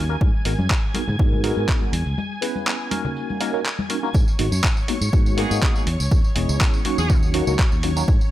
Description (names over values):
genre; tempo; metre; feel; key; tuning
filtered disco house; 122 BPM; 4/4; straight; G# minor; A4 = 439 Hz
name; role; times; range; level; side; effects
tine electric piano; accompaniment; 0.0-8.0 s; F#3 to B4; -26 LUFS; equal; medium stereo tremolo, phaser, vintage 12-bit sampler grit, sidechain pumping, low-pass filter
string machine, full ensemble; sustained chords; 0.0-8.3 s; C#5 to G#6; -33 LUFS; equal; ensemble chorus, vintage 12-bit sampler grit, sidechain pumping, low-pass filter
fingered electric bass; bass; 0.0-8.2 s; E1 to G#2; -23 LUFS; equal; sidechain pumping, low-pass filter
tambourine and congas; percussion; 0.1-4.1 s; none; -30 LUFS; left 3 dB; sidechain pumping on perc, low-pass filter on perc
electronic kick drum; drums; 0.2-8.2 s; none; -19 LUFS; equal; none
dusty soul sampler-style drum kit; drums; 0.5-8.3 s; handclaps, hi-hat, tambourine; -26 LUFS; equal; sidechain pumping on hats, sidechain pumping on perc
clear horn section; melody; 5.4-7.1 s; G#4; -30 LUFS; right 1 dB; sidechain pumping, low-pass filter, dub echo
room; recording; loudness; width
little or no reverb; none; -18 LUFS; side -14 dB against mid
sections
0.0-4.1 A section; 4.1-8.3 B section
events
break 2.2-4.1; drop 4.1-8.3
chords
0.2 G#m9; 1.9 E6; 3.2 D#m7; 4.1 G#m9; 5.9 E6; 7.1 D#m7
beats
| 0.21 0.70 1.19 1.68 | 2.18 2.67 3.16 3.65 | 4.14 4.63 5.13 5.62 | 6.11 6.60 7.09 7.59 | 8.08